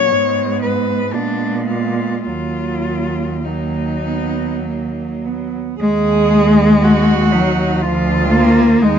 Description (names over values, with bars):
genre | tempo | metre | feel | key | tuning
classical, lyrical piece for cello ensemble | 50-61 BPM | 3/4 | rubato | Eb minor | A4 = 441 Hz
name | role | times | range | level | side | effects
rich cello | melody | 0.0-9.0 s | D4 to Db5 | -21 LUFS | left 6 dB | none
rich cello | second line | 0.0-9.0 s | Bb3 to Ab4 | -21 LUFS | right 10 dB | none
rich cello | accompaniment | 0.0-9.0 s | F3 to Bb3 | -16 LUFS | left 1 dB | none
rich cello | bass | 0.0-9.0 s | D2 to Bb2 | -21 LUFS | right 2 dB | none
room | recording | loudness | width
moderate studio reverb, RT60 0.7 s | dark, warm production, nothing above 7.8 kHz | -14 LUFS | side -8 dB against mid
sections
0.0-5.8 A section; 5.8-9.0 A section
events
none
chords
0.1 Abm; 1.1 Bb7b9; 2.3 Ebm; 7.8 Bb/D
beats
0.12 1.14 | 2.26 3.46 4.65 | 5.80 6.82 7.82 | 8.83